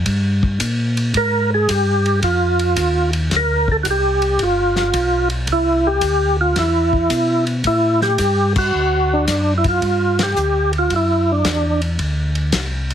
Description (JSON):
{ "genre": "soul jazz organ trio", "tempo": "111 BPM", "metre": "4/4", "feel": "swing 68% on 8ths", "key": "unclear", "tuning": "A4 = 444 Hz", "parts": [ { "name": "mellow tonewheel organ", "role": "bass", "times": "0.0-12.9 s", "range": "G1 to B2", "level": "-20 LUFS", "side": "equal", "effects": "slow rotary speaker" }, { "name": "warm soul drum kit", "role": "drums", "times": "0.1-12.9 s", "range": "crash cymbal, hi-hat, kick drum, ride cymbal, snare drum", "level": "-24 LUFS", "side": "left 2 dB", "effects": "none" }, { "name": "percussive tonewheel organ", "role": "melody", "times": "1.2-11.8 s", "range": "D4 to Bb4", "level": "-17 LUFS", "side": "right 1 dB", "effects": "slow rotary speaker, overdrive, chorus vibrato" } ], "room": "light reverb", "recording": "heavily compressed radio sound, multiband compression", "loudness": "-15 LUFS", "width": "side -9 dB against mid", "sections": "0.0-9.8 A section; 9.8-12.9 B section", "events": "band accent 8.5, 10.1", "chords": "0.0 Eb (rootless); 1.2 Ab5; 3.3 Bb69; 4.4 G7; 5.5 Cmaj7; 7.7 Emadd11; 8.7 D; 9.8 G5; 12.0 Csus2" }